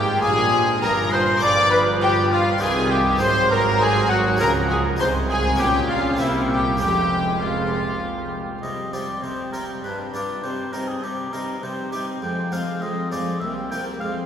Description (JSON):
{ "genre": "classical, baroque-style concerto movement with solo episodes", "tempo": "100 BPM", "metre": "3/4", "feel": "straight", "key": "F minor, C minor from 8.6 s", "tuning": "A4 = 440 Hz", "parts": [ { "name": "warm chamber violin section", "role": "melody", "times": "0.0-14.3 s", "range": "Eb4 to D6", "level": "-27 LUFS", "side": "left 2 dB", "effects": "none" }, { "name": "warm oboe", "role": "melody", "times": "0.0-14.1 s", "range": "E4 to G5", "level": "-24 LUFS", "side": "equal", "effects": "none" }, { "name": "warm chamber violin section", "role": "second line", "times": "0.0-14.3 s", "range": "C4 to D5", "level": "-25 LUFS", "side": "left 1 dB", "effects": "none" }, { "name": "dark chamber viola section", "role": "accompaniment", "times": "0.0-14.3 s", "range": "Eb3 to Db4", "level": "-29 LUFS", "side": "right 2 dB", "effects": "none" }, { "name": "harpsichord", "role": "accompaniment", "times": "0.0-14.3 s", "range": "C2 to Ab4", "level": "-31 LUFS", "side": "equal", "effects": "none" }, { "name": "warm chamber cello section", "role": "bass", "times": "0.0-14.1 s", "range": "C2 to Db3", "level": "-29 LUFS", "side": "right 2 dB", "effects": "none" }, { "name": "warm studio double bass section", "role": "bass", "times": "0.0-8.4 s", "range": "F1 to Db2", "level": "-27 LUFS", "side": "right 2 dB", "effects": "none" } ], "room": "wet cathedral reverb, RT60 6.1 s", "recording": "heard from further back in the room", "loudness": "-19 LUFS", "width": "side -8 dB against mid", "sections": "0.0-8.6 A section; 8.6-14.3 B section", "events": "none", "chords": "0.0 Fm/Ab; 1.4 G7; 2.6 Cm; 3.2 Ab5; 4.4 Db; 5.0 Ab/C; 5.6 Gdim/Bb; 6.2 C7; 6.8 Fm; 8.6 C5; 9.8 G7; 10.4 Cm; 12.2 Fm; 13.4 C7(no3)" }